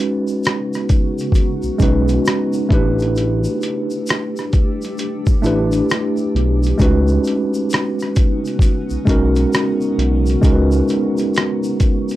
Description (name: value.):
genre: lo-fi hip hop.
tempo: 66 BPM.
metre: 4/4.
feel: swing 63% on 16ths.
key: unclear.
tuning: A4 = 441 Hz.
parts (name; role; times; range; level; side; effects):
mellow tine electric piano; accompaniment; 0.0-12.2 s; Ab3 to Cb5; -18 LUFS; right 1 dB; medium stereo tremolo.
granular cloud pad; sustained chords; 0.6-12.2 s; Db3 to G4; -26 LUFS; left 2 dB; built-in reverb.
dusty soul sampler-style drum kit; drums; 0.0-12.2 s; hi-hat, kick drum, rim click; -16 LUFS; equal; overdrive, vintage 12-bit sampler grit.
tube shaker; percussion; 0.3-12.2 s; none; -38 LUFS; left 3 dB; none.
smooth synth bass; bass; 1.6-10.8 s; A1 to Db2; -17 LUFS; equal; none.
room: little or no reverb.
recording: dry, gritty hardware recording.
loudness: -15 LUFS.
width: side -15 dB against mid.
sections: 0.0-12.2 A section.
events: none.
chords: 0.0 Db9sus4; 2.7 A9sus4; 6.8 Db9sus4.